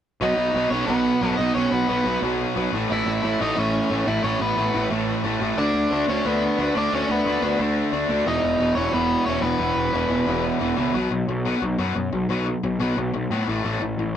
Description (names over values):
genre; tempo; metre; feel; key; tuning
punk; 179 BPM; 4/4; straight; unclear; A4 = 440 Hz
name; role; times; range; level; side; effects
biting overdriven guitar; melody; 0.2-10.6 s; B3 to E5; -24 LUFS; equal; none
crunchy overdriven guitar; riff; 0.2-10.9 s; E2 to D4; -26 LUFS; right 6 dB; none
overdriven semi-hollow guitar; riff; 0.2-14.1 s; E2 to D4; -25 LUFS; left 4 dB; none
fuzz picked electric bass; bass; 0.2-14.2 s; E1 to A2; -26 LUFS; equal; overdrive
room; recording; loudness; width
moderate booth ambience, RT60 0.2 s; rough rehearsal-room recording; -20 LUFS; side -9 dB against mid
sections
0.2-11.0 A section; 11.0-14.2 B section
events
none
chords
0.2 B; 2.7 A; 5.6 D5; 8.3 E5; 11.0 B5; 13.5 A5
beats
| 0.22 0.55 0.89 1.22 | 1.56 1.89 2.23 2.56 | 2.90 3.23 3.57 3.90 | 4.24 4.57 4.91 5.24 | 5.58 5.91 6.25 6.58 | 6.92 7.25 7.59 7.93 | 8.26 8.60 8.93 9.27 | 9.61 9.94 10.28 10.62 | 10.95 11.29 11.62 11.96 | 12.30 12.63 12.97 13.31 | 13.64 13.98